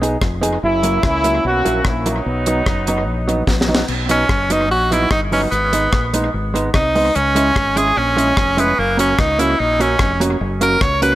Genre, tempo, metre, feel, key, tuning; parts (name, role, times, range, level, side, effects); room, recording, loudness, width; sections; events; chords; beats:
ska; 147 BPM; 4/4; straight; B major; A4 = 441 Hz
hollow-body jazz guitar; accompaniment; 0.0-11.2 s; F#3 to G#4; -21 LUFS; right 2 dB
fingered electric bass; bass; 0.0-11.2 s; E#1 to C#2; -22 LUFS; left 1 dB
deep reggae drum kit; drums; 0.0-11.1 s; crash cymbal, hi-hat, kick drum, rim click, snare drum; -21 LUFS; equal; dub echo
warm horn section; melody; 0.6-3.7 s; F#3 to F#4; -20 LUFS; equal; dub echo
edgy tenor saxophone; melody; 4.1-11.2 s; A#3 to C#5; -16 LUFS; right 1 dB; dub echo
light reverb; -14 LUFS; side -15 dB against mid
0.0-3.9 A section; 3.9-11.2 B section
drum fill 3.5-3.9; tenor saxophone solo 3.9-11.2
0.0 G#m; 0.6 F#7; 2.3 B; 5.5 G#m; 7.1 C#m; 8.8 F#
0.21 | 0.62 1.03 1.44 1.84 | 2.25 2.66 3.07 3.48 | 3.88 4.29 4.70 5.11 | 5.52 5.92 6.33 6.74 | 7.15 7.56 7.96 8.37 | 8.78 9.19 9.59 10.00 | 10.40 10.81